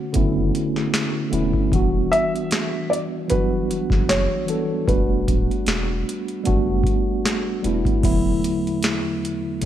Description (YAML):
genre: lo-fi hip hop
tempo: 76 BPM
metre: 4/4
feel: swing 56% on 16ths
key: E dorian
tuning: A4 = 440 Hz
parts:
  - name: felt-muted upright piano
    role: melody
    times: 0.0-7.2 s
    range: B4 to E5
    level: -24 LUFS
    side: equal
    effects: none
  - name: mellow tine electric piano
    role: accompaniment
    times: 0.0-9.7 s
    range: E2 to A4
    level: -22 LUFS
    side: right 1 dB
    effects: fast stereo tremolo, cassette tape
  - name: booming analog drum machine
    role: drums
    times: 0.1-9.7 s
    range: crash cymbal, hi-hat, kick drum, snare drum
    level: -23 LUFS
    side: equal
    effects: none
  - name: warm sub bass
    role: bass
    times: 0.2-8.4 s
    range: D1 to F#1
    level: -25 LUFS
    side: equal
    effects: none
room: light reverb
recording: cassette tape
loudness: -19 LUFS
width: side -11 dB against mid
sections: 0.0-8.0 A section; 8.0-9.7 A section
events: none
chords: 0.0 Bm9; 1.7 Em7; 4.9 Em11; 8.0 D6/E